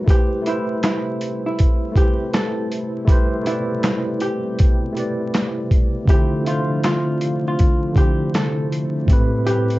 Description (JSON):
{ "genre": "lo-fi hip hop", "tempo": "80 BPM", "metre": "4/4", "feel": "swing 66% on 16ths", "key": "A minor", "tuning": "A4 = 439 Hz", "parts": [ { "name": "vintage hollow-body jazz guitar", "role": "melody", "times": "0.0-9.8 s", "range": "E4 to A4", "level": "-26 LUFS", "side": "equal", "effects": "low-pass filter, plate reverb" }, { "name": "tine electric piano", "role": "accompaniment", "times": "0.0-9.8 s", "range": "A2 to E5", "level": "-22 LUFS", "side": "equal", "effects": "fast stereo tremolo, cassette tape, low-pass filter, plate reverb" }, { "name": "warm analog pad", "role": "sustained chords", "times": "0.0-9.8 s", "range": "B2 to E4", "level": "-30 LUFS", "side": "equal", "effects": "chorus, phaser, low-pass filter, plate reverb" }, { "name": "boom bap sampler-style drum kit", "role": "drums", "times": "0.1-9.8 s", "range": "handclaps, hi-hat, kick drum, snare drum", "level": "-17 LUFS", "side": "equal", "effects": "none" } ], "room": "moderate studio reverb, RT60 0.5 s", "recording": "dark, warm production, vinyl crackle, nothing above 7.8 kHz", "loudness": "-17 LUFS", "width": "side -18 dB against mid", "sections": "0.0-9.8 A section", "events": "none", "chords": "0.1 Am7; 6.1 Dm7; 9.1 Am7" }